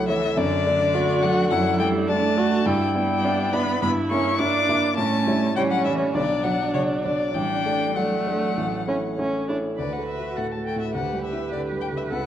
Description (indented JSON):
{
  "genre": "quick classical-period movement for piano quartet",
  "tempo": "104 BPM",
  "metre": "4/4",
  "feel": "rubato",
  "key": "D major",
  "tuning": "A4 = 439 Hz",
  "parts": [
    { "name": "rich violin", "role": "melody", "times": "0.0-12.3 s", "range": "C#5 to D6", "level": "-26 LUFS", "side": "left 7 dB", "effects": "none" },
    { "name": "clear cello", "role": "second line", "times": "0.0-12.3 s", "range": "C#3 to B4", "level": "-27 LUFS", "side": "right 5 dB", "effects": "none" },
    { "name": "rich viola", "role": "accompaniment", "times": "0.0-12.3 s", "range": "A3 to A4", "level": "-27 LUFS", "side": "right 2 dB", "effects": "none" },
    { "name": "warm baby grand piano", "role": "accompaniment", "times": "0.0-12.3 s", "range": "A1 to E5", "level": "-25 LUFS", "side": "equal", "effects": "none" }
  ],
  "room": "wet recital hall reverb, RT60 1.5 s",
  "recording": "worn, warbling old tape, cassette tape, warbly pitch drift",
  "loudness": "-20 LUFS",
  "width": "side -10 dB against mid",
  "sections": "0.0-9.8 A section; 9.8-12.3 B section",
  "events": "none",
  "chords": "0.4 D/F#; 2.7 Em7/G; 3.8 Em7b5/G; 5.0 A7; 6.2 Bm; 7.4 D/A; 8.6 A; 9.8 D; 10.9 Em7/D"
}